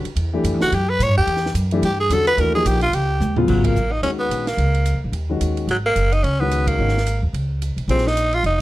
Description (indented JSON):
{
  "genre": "modal jazz",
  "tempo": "218 BPM",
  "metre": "4/4",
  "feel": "swing 58% on 8ths",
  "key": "E dorian, G# dorian from 3.5 s",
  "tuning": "A4 = 440 Hz",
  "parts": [
    { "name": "warm upright piano", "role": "accompaniment", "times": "0.0-8.0 s", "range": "C#3 to G#4", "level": "-23 LUFS", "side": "left 3 dB", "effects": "none" },
    { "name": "upright bass", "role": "bass", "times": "0.0-8.6 s", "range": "E#1 to A2", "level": "-20 LUFS", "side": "equal", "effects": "none" },
    { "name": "compact cocktail drum kit", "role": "drums", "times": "0.1-8.5 s", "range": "crash cymbal, hi-hat, kick drum, ride cymbal, snare drum, toms", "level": "-30 LUFS", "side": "right 3 dB", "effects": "none" },
    { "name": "growling tenor saxophone", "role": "melody", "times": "0.6-8.6 s", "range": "F#3 to C#5", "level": "-20 LUFS", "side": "equal", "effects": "none" }
  ],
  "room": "light reverb",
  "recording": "dark, warm production",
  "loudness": "-17 LUFS",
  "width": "side -16 dB against mid",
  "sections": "0.0-3.5 A section; 3.5-8.6 B section",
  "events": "tenor saxophone solo 0.0-3.5; drum fill 3.2; band accent 3.6, 6.6",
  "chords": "0.0 Em11; 2.4 D#9; 3.5 G#9sus4; 7.9 A#13sus4"
}